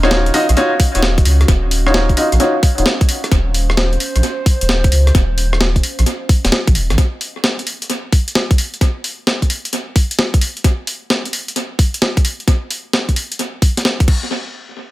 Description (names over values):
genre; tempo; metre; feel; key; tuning
UK garage, two-step garage; 131 BPM; 4/4; swing 67% on 16ths; unclear; A4 = 440 Hz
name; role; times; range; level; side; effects
bright grand piano; stabs; 0.0-2.8 s; Eb4 to Eb5; -17 LUFS; equal; low-pass filter, dub echo
soft dub sub bass; bass; 0.0-7.0 s; Eb1 to Db2; -15 LUFS; equal; sidechain pumping
breakbeat sampler-style drum kit; drums; 0.0-14.2 s; crash cymbal, hi-hat, rim click, snare drum; -18 LUFS; equal; analog delay
warbly tape-like pad; texture; 0.0-7.0 s; Db4 to F5; -27 LUFS; right 2 dB; chorus, built-in reverb, sidechain pumping
electronic kick drum; drums; 0.8-14.2 s; none; -13 LUFS; equal; none
room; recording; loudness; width
digital ambience; echo-heavy mix; -13 LUFS; side -17 dB against mid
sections
0.0-14.3 A section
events
filter sweep on grand piano 0.0-3.3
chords
0.0 Ebm9; 3.1 Dbmaj9/Eb; 7.0 N.C.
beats
0.11 0.57 1.02 | 1.48 1.94 2.40 2.86 | 3.31 3.77 4.23 4.69 | 5.15 5.61 6.06 6.52 | 6.98 7.44 7.89 8.35 | 8.81 9.27 9.73 10.19 | 10.64 11.10 11.56 12.02 | 12.48 12.93 13.39 13.85